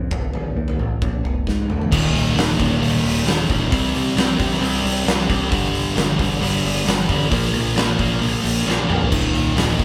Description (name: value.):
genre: quiet-loud alternative rock.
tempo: 133 BPM.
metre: 4/4.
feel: straight.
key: Eb major.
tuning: A4 = 437 Hz.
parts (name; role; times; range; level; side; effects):
overdriven picked electric bass; bass; 0.0-9.8 s; Eb1 to Ab2; -27 LUFS; equal; none.
oversized low-tuned drum kit; drums; 0.1-9.8 s; crash cymbal, hi-hat, kick drum, snare drum, splash cymbal, toms; -23 LUFS; equal; none.
thick fuzz guitar; riff; 1.9-9.8 s; Eb2 to C4; -22 LUFS; equal; distortion.
room: light reverb.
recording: band playing live in one room.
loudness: -19 LUFS.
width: mono.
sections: 0.0-1.9 A section; 1.9-9.8 B section.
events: drum fill 1.5-1.9, 8.7-9.1.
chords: 0.1 Ab5; 1.0 Bb7; 1.9 Eb5; 3.7 C5; 5.5 G5; 7.3 Bb5; 9.1 Eb5.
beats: | 0.11 0.56 1.01 1.47 | 1.92 2.37 2.82 3.27 | 3.72 4.17 4.62 5.07 | 5.52 5.97 6.42 6.87 | 7.32 7.76 8.21 8.66 | 9.11 9.56.